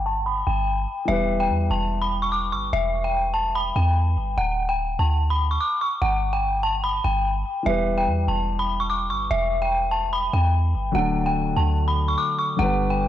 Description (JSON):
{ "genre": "hip hop", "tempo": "146 BPM", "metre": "4/4", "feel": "half-time", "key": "unclear", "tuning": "A4 = 444 Hz", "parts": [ { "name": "dark detuned synth bell", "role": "melody", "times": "0.0-13.1 s", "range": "E5 to D6", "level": "-23 LUFS", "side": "left 1 dB", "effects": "chorus, low-pass filter" }, { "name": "warm 808-style bass", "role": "bass", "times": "0.0-13.1 s", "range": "D1 to E2", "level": "-24 LUFS", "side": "equal", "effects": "tube saturation" }, { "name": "dark concert grand piano", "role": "accompaniment", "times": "1.1-4.4, 7.6-13.1 s", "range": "D3 to B4", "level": "-28 LUFS", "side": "left 2 dB", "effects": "low-pass filter" } ], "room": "light reverb", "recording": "dry, gritty hardware recording", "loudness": "-20 LUFS", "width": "side -12 dB against mid", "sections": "0.0-13.1 A section", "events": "filter sweep 0.0-1.1", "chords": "0.0 N.C.; 1.1 Em; 4.4 N.C.; 7.7 Em; 10.9 D" }